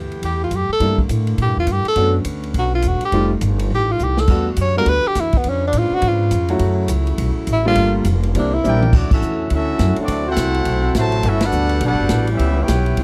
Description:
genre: jazz, big band swing.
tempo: 207 BPM.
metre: 4/4.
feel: swing 62% on 8ths.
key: D major.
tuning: A4 = 439 Hz.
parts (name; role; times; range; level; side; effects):
warm saxophone section; sustained chords; 0.0-13.0 s; C3 to G4; -31 LUFS; equal; none.
upright bass; bass; 0.0-13.0 s; E1 to Bb2; -21 LUFS; equal; none.
swinging big-band drum kit; drums; 0.1-13.0 s; crash cymbal, hi-hat, kick drum, ride cymbal, snare drum, toms; -23 LUFS; equal; none.
breathy tenor saxophone; melody; 0.3-8.8 s; B3 to C#5; -21 LUFS; equal; none.
clear concert grand piano; accompaniment; 0.8-8.8 s; F#3 to F#4; -23 LUFS; equal; none.
clear trombone section; second line; 8.6-13.0 s; C3 to G4; -25 LUFS; equal; none.
clear trumpet section; melody; 8.7-13.0 s; A3 to A5; -25 LUFS; equal; none.
room: little or no reverb.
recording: dry, close 1970s-style studio recording.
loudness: -18 LUFS.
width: mono.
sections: 0.0-8.9 A section; 8.9-13.0 B section.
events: tenor saxophone solo 0.0-8.9; drum fill 4.0, 8.6; band accent 9.1, 11.4.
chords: 0.0 G69; 0.8 Gm69; 2.0 Bm9; 3.1 F9; 4.3 Em11; 5.4 C#7b9; 6.6 F#m7; 7.8 Gm7; 8.3 C9; 8.9 Dmaj9; 10.1 D13; 11.2 Gmaj9; 12.4 C#m7b5.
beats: 0.22 0.51 | 0.80 1.09 1.38 1.68 | 1.97 2.26 2.55 2.84 | 3.13 3.42 3.71 4.00 | 4.29 4.58 4.87 5.16 | 5.45 5.74 6.03 6.32 | 6.61 6.90 7.19 7.48 | 7.77 8.06 8.35 8.64 | 8.93 9.22 9.51 9.80 | 10.09 10.38 10.66 10.95 | 11.24 11.53 11.82 12.11 | 12.40 12.69 12.98.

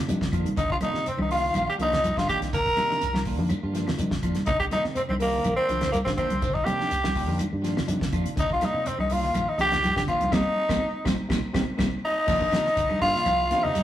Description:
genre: afrobeat.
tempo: 123 BPM.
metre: 4/4.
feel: straight.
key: C minor.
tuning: A4 = 441 Hz.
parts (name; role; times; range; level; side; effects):
overdriven reed electric piano; accompaniment; 0.1-13.7 s; Eb3 to D4; -36 LUFS; left 1 dB; none.
electric guitar at the edge of break-up; arpeggios; 0.1-13.8 s; Bb2 to G3; -36 LUFS; left 2 dB; spring reverb.
fingered electric bass; bass; 0.1-13.7 s; Bb1 to C3; -32 LUFS; equal; none.
damped 70s drum kit; drums; 0.1-13.8 s; crash cymbal, hi-hat, kick drum, snare drum; -32 LUFS; equal; none.
congas; percussion; 0.1-13.8 s; none; -31 LUFS; right 1 dB; none.
shekere; percussion; 0.1-13.8 s; none; -40 LUFS; right 1 dB; none.
clean electric guitar; stabs; 0.3-13.7 s; Eb3 to F4; -34 LUFS; right 2 dB; slapback echo.
claves; percussion; 0.3-13.7 s; none; -44 LUFS; left 5 dB; none.
raspy tenor saxophone; melody; 0.6-13.8 s; Bb3 to Bb4; -25 LUFS; equal; none.
breathy mellow silver concert flute; second line; 0.6-13.8 s; Bb4 to Bb5; -32 LUFS; left 1 dB; none.
breathy trumpet; second line; 0.6-13.8 s; Bb4 to Bb5; -36 LUFS; right 2 dB; none.
room: moderate stone room reverb, RT60 1.2 s.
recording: rough rehearsal-room recording, tube saturation.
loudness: -22 LUFS.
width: side -12 dB against mid.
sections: 0.0-12.3 A section; 12.3-13.8 B section.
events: band accent 10.3-12.3; drum fill 11.8-12.3.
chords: 0.0 Cm11.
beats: 0.08 | 0.57 1.06 1.55 2.03 | 2.52 3.01 3.50 3.98 | 4.47 4.96 5.45 5.93 | 6.42 6.91 7.40 7.89 | 8.37 8.86 9.35 9.84 | 10.33 10.82 11.30 11.79 | 12.28 12.77 13.26 13.75.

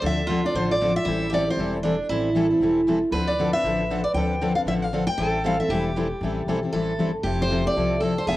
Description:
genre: acoustic string swing (jazz manouche).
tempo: 233 BPM.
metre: 4/4.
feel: swing 57% on 8ths.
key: A minor.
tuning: A4 = 442 Hz.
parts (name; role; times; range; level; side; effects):
picked steel-string acoustic guitar; melody; 0.0-8.4 s; C5 to G5; -25 LUFS; equal; cassette tape.
picked steel-string acoustic guitar; second line; 0.0-8.4 s; D4 to B4; -26 LUFS; right 2 dB; cassette tape.
picked steel-string acoustic guitar; accompaniment; 0.0-8.4 s; D3 to A4; -26 LUFS; left 3 dB; cassette tape.
picked steel-string acoustic guitar; accompaniment; 0.0-8.4 s; D3 to B4; -32 LUFS; right 3 dB; cassette tape.
upright bass; bass; 0.0-8.4 s; E1 to D2; -31 LUFS; equal; none.
room: light reverb, studio reverb.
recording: home recording on cassette.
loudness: -21 LUFS.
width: side -16 dB against mid.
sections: 0.0-8.4 A section.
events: none.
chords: 0.0 Dm7; 1.1 Am7; 3.1 Dm7; 5.2 Am7; 7.2 Fmaj7.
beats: | 0.03 0.29 0.55 0.80 | 1.06 1.32 1.58 1.83 | 2.09 2.35 2.61 2.86 | 3.12 3.38 3.64 3.90 | 4.15 4.41 4.67 4.93 | 5.18 5.44 5.70 5.96 | 6.21 6.47 6.73 6.99 | 7.25 7.50 7.76 8.02 | 8.28.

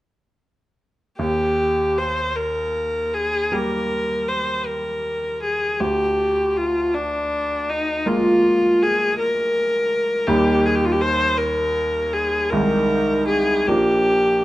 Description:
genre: classical, romantic duo for viola and grand piano.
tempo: 53 BPM (dotted quarters).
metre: 12/8.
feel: rubato.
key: Eb major.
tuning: A4 = 439 Hz.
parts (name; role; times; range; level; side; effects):
clear viola; melody; 1.2-14.4 s; D4 to C5; -19 LUFS; left 1 dB; none.
bright baby grand piano; accompaniment; 1.2-14.4 s; Bb1 to G4; -24 LUFS; right 1 dB; none.
room: moderate large studio reverb, RT60 0.9 s.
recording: dark, warm production.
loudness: -18 LUFS.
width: side -16 dB against mid.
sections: 1.2-14.4 A section.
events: none.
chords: 1.2 Eb; 5.8 Bb7/D; 10.3 Eb; 12.5 Ab/C; 13.7 Bb.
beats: | 1.19 2.36 3.52 4.66 | 5.80 6.94 8.06 9.18 | 10.28 11.39 12.52 13.68.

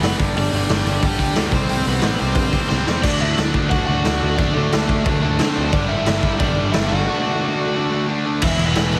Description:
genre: punk rock.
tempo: 179 BPM.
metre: 4/4.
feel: straight.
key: unclear.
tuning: A4 = 440 Hz.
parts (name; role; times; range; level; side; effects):
overdriven electric guitar; melody; 0.0-9.0 s; G3 to F#5; -26 LUFS; equal; delay.
distorted electric guitar; riff; 0.0-9.0 s; E2 to D4; -29 LUFS; equal; overdrive.
distorted electric guitar; riff; 0.0-9.0 s; E2 to D4; -28 LUFS; equal; distortion.
picked electric bass; bass; 0.0-9.0 s; E1 to D3; -25 LUFS; equal; none.
raw garage drum kit; drums; 0.0-9.0 s; crash cymbal, hi-hat, kick drum, snare drum; -23 LUFS; equal; none.
fuzz guitar; riff; 5.7-9.0 s; E2 to D4; -29 LUFS; equal; none.
room: little or no reverb.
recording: heavily compressed radio sound.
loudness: -19 LUFS.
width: mono.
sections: 0.0-3.0 A section; 3.0-8.4 B section.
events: drum fill 2.7-3.0.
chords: 0.2 G5; 1.5 C5; 3.0 D; 5.7 G5; 7.1 D; 8.4 E5.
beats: 0.03 | 0.36 0.70 1.03 1.37 | 1.70 2.04 2.37 2.71 | 3.04 3.38 3.71 4.05 | 4.38 4.72 5.06 5.39 | 5.73 6.07 6.40 6.74 | 7.08 7.41 7.75 8.09 | 8.42 8.76.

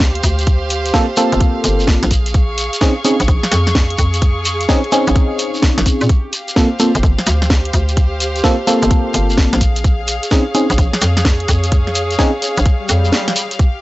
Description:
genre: UK garage, two-step garage.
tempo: 128 BPM.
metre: 4/4.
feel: swing 65% on 16ths.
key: unclear.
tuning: A4 = 440 Hz.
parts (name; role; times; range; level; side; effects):
hollow knocking FM bass; bass; 0.0-13.1 s; G1 to Bb2; -17 LUFS; equal; sidechain pumping.
electronic kick drum; drums; 0.0-13.7 s; none; -14 LUFS; equal; none.
garage drum kit; drums; 0.0-13.7 s; hi-hat, snare drum; -19 LUFS; equal; none.
shekere; percussion; 0.0-13.7 s; none; -24 LUFS; equal; none.
dark chamber string section; texture; 0.0-13.8 s; G4 to Db6; -23 LUFS; equal; sidechain pumping.
FM electric piano; stabs; 0.9-12.3 s; Bb3 to A4; -16 LUFS; equal; chorus, phaser, vintage 12-bit sampler grit, low-pass filter, analog delay.
swell; sound effects; 12.8-13.6 s; none; -25 LUFS; left 1 dB; none.
room: little or no reverb.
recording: dry, gritty hardware recording, nothing above 7.9 kHz.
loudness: -12 LUFS.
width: side -18 dB against mid.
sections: 0.0-13.8 A section.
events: filter sweep on FM electric piano 0.0-13.8; swell 12.8-13.6; break 13.1-13.6.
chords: 0.0 Gm11; 2.1 Bbm11; 6.1 Gm11; 9.6 Bbm7.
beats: 0.00 | 0.47 0.94 1.41 1.88 | 2.34 2.81 3.28 3.75 | 4.22 4.69 5.16 5.62 | 6.09 6.56 7.03 7.50 | 7.97 8.44 8.91 9.38 | 9.84 10.31 10.78 11.25 | 11.72 12.19 12.66 13.12 | 13.59.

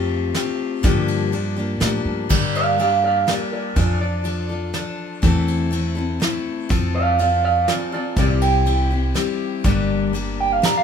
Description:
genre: acoustic folk duo or small band.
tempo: 122 BPM.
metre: 3/4.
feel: straight.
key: G dorian.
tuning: A4 = 441 Hz.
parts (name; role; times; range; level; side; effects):
picked steel-string acoustic guitar; accompaniment; 0.0-10.8 s; G2 to A4; -23 LUFS; left 5 dB; none.
upright bass; bass; 0.0-10.6 s; G1 to A2; -23 LUFS; equal; none.
soft brush drum kit; drums; 0.3-10.7 s; crash cymbal, kick drum, ride cymbal, snare drum; -25 LUFS; right 1 dB; none.
electric guitar through a small old amp; melody; 2.6-10.8 s; F4 to Bb5; -20 LUFS; right 5 dB; harmonic tremolo.
room: moderate studio reverb, RT60 0.5 s.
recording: minimal, uncompressed stereo recording.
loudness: -18 LUFS.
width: side -7 dB against mid.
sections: 0.0-2.3 A section; 2.3-10.8 B section.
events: clean electric guitar solo 2.3-10.8.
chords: 0.0 Fadd9; 0.8 Gm7; 2.3 Gm; 3.8 Dm/F; 5.2 Am/E; 6.7 F; 8.2 C; 9.7 Gm.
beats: 0.35 | 0.84 1.33 1.81 | 2.30 2.79 3.28 | 3.77 4.26 4.75 | 5.24 5.73 6.22 | 6.71 7.20 7.69 | 8.18 8.67 9.16 | 9.65 10.14 10.63.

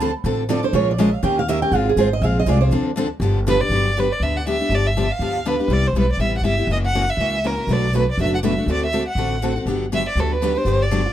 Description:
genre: acoustic string swing (jazz manouche).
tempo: 242 BPM.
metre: 4/4.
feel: swing 55% on 8ths.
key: G major from 3.7 s.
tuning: A4 = 441 Hz.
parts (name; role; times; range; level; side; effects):
picked steel-string acoustic guitar; second line; 0.0-2.8, 11.1 s; F4 to A5; -22 LUFS; right 6 dB; none.
picked steel-string acoustic guitar; accompaniment; 0.0-11.0 s; B2 to Bb4; -22 LUFS; left 4 dB; none.
picked steel-string acoustic guitar; accompaniment; 0.0-3.6, 7.7-11.0 s; B2 to B4; -27 LUFS; right 7 dB; none.
upright bass; bass; 0.0-11.1 s; F#1 to Eb2; -22 LUFS; equal; none.
dark violin; melody; 3.5-11.1 s; A4 to F#5; -22 LUFS; right 2 dB; tape echo.
room: light reverb.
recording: none.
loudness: -17 LUFS.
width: side -11 dB against mid.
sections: 0.0-3.7 A section; 3.7-11.1 B section.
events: steel-string acoustic guitar solo 0.0-3.7.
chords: 0.0 Dm7; 0.7 Bbm7; 1.2 Eb7; 1.7 Ab6; 2.7 Dm7; 3.2 G7; 3.7 Gmaj7; 4.7 G7; 5.7 Cmaj7; 6.7 F#7; 7.7 Bm7; 8.7 D7; 9.7 Gmaj7.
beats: 0.00 0.25 0.49 | 0.74 0.99 1.24 1.48 | 1.73 1.98 2.23 2.47 | 2.72 2.97 3.21 3.46 | 3.71 3.96 4.21 4.45 | 4.70 4.95 5.20 5.45 | 5.69 5.94 6.19 6.44 | 6.69 6.93 7.18 7.43 | 7.68 7.93 8.18 8.43 | 8.67 8.92 9.17 9.42 | 9.67 9.91 10.16 10.41 | 10.66 10.91.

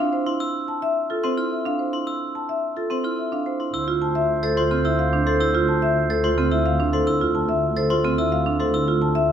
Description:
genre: classical, minimalist pattern music.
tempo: 108 BPM.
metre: 3/4.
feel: straight.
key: D minor.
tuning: A4 = 440 Hz.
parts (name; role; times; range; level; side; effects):
marimba with medium hard mallets; melody; 0.0-9.3 s; A4 to A5; -24 LUFS; left 5 dB; none.
marimba with hard mallets; arpeggios; 0.0-9.1 s; C4 to C5; -24 LUFS; right 5 dB; none.
glockenspiel with hard plastic mallets; arpeggios; 0.3-8.9 s; C6 to A6; -29 LUFS; equal; none.
bright clarinet; second line; 3.7-6.9 s; C5; -28 LUFS; right 4 dB; none.
rich symphonic double bass section; bass; 3.7-9.3 s; D2; -24 LUFS; equal; none.
room: wet large studio reverb, RT60 1.2 s.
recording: none.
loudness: -20 LUFS.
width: side -8 dB against mid.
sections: 0.0-3.7 A section; 3.7-9.3 B section.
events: none.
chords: 0.0 Dm7.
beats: | 0.41 0.96 1.52 | 2.07 2.63 3.18 | 3.74 4.29 4.85 | 5.41 5.96 6.52 | 7.07 7.63 8.18 | 8.74 9.29.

